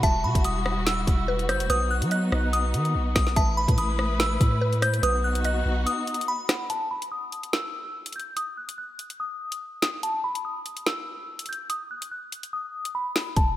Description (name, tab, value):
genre	hip hop, drill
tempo	144 BPM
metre	4/4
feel	half-time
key	unclear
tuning	A4 = 440 Hz
part	delicate synth tine bell	melody	0.0-13.5 s	A5 to G6	-28 LUFS	left 1 dB	chorus, low-pass filter, analog delay
part	mallet-like synth pluck	second line	0.0-6.7 s	B4 to F#5	-32 LUFS	right 2 dB	chorus, analog delay
part	warm symphonic string section	sustained chords	0.0-6.7 s	G3 to B4	-31 LUFS	equal	none
part	long sustained 808-style bass	bass	0.0-5.9, 13.4-13.6 s	D#1 to F#3	-26 LUFS	equal	none
part	drill drum kit	drums	0.0-13.5 s	hi-hat, kick drum, rim click, snare drum	-26 LUFS	equal	none
room	moderate lush hall reverb, RT60 1.9 s, digital ambience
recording	dreamy mix soaked in reverb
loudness	-23 LUFS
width	side -14 dB against mid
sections	0.0-6.7 A section; 6.7-13.6 B section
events	break 5.9-6.7, 6.7-13.4; filter sweep on synth bell 6.7-13.6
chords	0.0 Emadd9; 1.7 B; 3.4 Asus2; 5.0 B; 6.7 N.C.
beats	| 0.03 0.45 0.86 1.28 | 1.70 2.12 2.53 2.95 | 3.37 3.78 4.20 4.62 | 5.03 5.45 5.87 6.28 | 6.70 7.12 7.53 7.95 | 8.37 8.78 9.20 9.62 | 10.03 10.45 10.87 11.28 | 11.70 12.12 12.53 12.95 | 13.37